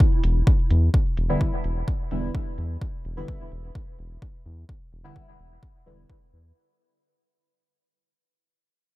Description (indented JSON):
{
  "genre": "dub techno",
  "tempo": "128 BPM",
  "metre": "4/4",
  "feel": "straight",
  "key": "E minor",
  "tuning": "A4 = 441 Hz",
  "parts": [
    { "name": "electronic kick drum", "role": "drums", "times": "0.0-6.2 s", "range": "none", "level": "-22 LUFS", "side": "equal", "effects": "overdrive" },
    { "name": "round analog bass", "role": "bass", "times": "0.2-6.5 s", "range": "E1 to E2", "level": "-24 LUFS", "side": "equal", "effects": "tube saturation, sidechain pumping" },
    { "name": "electronic hi-hat", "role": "drums", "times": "0.2-6.4 s", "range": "none", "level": "-45 LUFS", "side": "right 1 dB", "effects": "overdrive, low-pass filter on hats" },
    { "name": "deep mellow chord stab", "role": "stabs", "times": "1.3-6.0 s", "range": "D3 to E4", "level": "-31 LUFS", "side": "equal", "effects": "chorus, phaser, cassette tape, sidechain pumping, dub echo" }
  ],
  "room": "little or no reverb",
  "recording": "none",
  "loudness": "-21 LUFS",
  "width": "side -18 dB against mid",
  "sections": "0.0-6.6 A section",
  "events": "fade-out 0.0-6.6",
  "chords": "0.0 Em7"
}